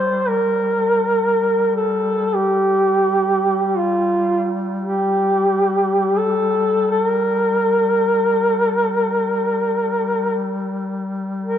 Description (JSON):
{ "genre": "caucasian folk, Caucasian lament", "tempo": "free time", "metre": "none", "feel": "none", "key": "G minor", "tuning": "A4 = 437 Hz", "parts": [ { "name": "mellow duduk", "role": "melody", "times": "0.0-11.6 s", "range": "F4 to C5", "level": "-17 LUFS", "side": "equal", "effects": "none" }, { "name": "warm duduk", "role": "drone", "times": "0.0-11.6 s", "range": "G3", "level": "-24 LUFS", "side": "left 2 dB", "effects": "none" } ], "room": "wet church reverb, RT60 2.9 s", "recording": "dark, warm production", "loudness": "-16 LUFS", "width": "side -9 dB against mid", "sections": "0.0-11.6 A section", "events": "none", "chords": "none" }